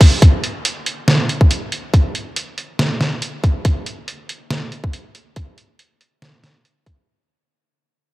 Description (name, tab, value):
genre	dubstep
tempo	140 BPM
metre	4/4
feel	swing 54% on 16ths, half-time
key	none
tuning	none
part	electronic kick drum	drums	0.0-7.0 s	none	-12 LUFS	equal	none
part	trip hop sampler-style drum kit	drums	0.0-7.0 s	hi-hat, snare drum	-19 LUFS	right 1 dB	none
room	digital ambience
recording	none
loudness	-16 LUFS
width	side -19 dB against mid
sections	0.2-7.1 A section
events	fade-out 0.2-7.1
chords	none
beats	| 0.22 0.65 1.08 1.51 | 1.93 2.36 2.79 3.22 | 3.65 4.08 4.51 4.93 | 5.36 5.79 6.22 6.65